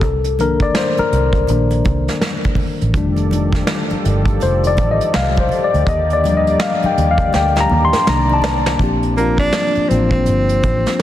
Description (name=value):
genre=R&B, neo-soul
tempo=82 BPM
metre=4/4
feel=swing 61% on 16ths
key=unclear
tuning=A4 = 441 Hz
part: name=mellow tine electric piano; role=accompaniment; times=0.0-11.0 s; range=Eb3 to C6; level=-17 LUFS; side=left 4 dB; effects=none
part: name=vintage muted fingered electric bass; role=bass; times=0.0-10.8 s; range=F1 to Eb2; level=-18 LUFS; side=right 1 dB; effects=none
part: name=vintage brush drum kit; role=drums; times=0.0-11.0 s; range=hi-hat, kick drum, snare drum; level=-20 LUFS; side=right 1 dB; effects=soft clipping on snare
part: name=congas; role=percussion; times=0.2-8.6 s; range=none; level=-29 LUFS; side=right 1 dB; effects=none
part: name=warm analog pad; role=sustained chords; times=3.0-8.8 s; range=C3 to D5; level=-24 LUFS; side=right 1 dB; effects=chorus
part: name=warm tenor saxophone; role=melody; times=9.2-11.0 s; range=Bb3 to D4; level=-17 LUFS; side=right 1 dB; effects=slapback echo
room=light reverb, small room ambience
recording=dense, heavily limited modern master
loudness=-13 LUFS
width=side -12 dB against mid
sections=0.0-8.8 A section; 8.8-11.0 B section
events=tine electric piano solo 0.0-8.8; drum fill 7.3-8.8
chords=0.0 Cm7; 2.9 F13; 5.9 Ebmaj7; 8.1 Cm9; 8.8 Bb69